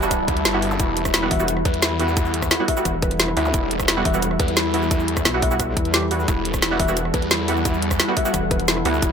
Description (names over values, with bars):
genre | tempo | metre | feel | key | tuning
dark technical drum and bass | 175 BPM | 4/4 | straight | E minor | A4 = 436 Hz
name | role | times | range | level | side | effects
deep dark ambient pad | sustained chords | 0.0-9.1 s | G3 to A5 | -26 LUFS | left 1 dB | chorus, built-in reverb, sidechain pumping
orchestra-hit-like synth stab | stabs | 0.0-9.1 s | G3 to F#4 | -26 LUFS | right 3 dB | built-in reverb, cassette tape, dub echo
snarling distorted saw bass | bass | 0.0-9.1 s | E1 to E2 | -25 LUFS | equal | distortion, tube saturation
drum and bass drum kit | drums | 0.0-9.1 s | cabasa, hi-hat, rim click, snare drum | -22 LUFS | equal | none
electronic kick drum | drums | 0.1-9.1 s | none | -24 LUFS | equal | none
swell and zap | sound effects | 0.3-0.8, 3.5 s | none | -31 LUFS | left 1 dB | none
felt-muted upright piano | arpeggios | 0.8-9.1 s | E4 to E5 | -27 LUFS | left 3 dB | sidechain pumping, dub echo
metallic wobble bass | bass | 1.3-8.8 s | E1 to E2 | -25 LUFS | equal | chorus
room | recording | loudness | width
light reverb, digital ambience | none | -18 LUFS | side -7 dB against mid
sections
0.0-9.1 A section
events
swell 0.3-0.8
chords
0.0 Emadd9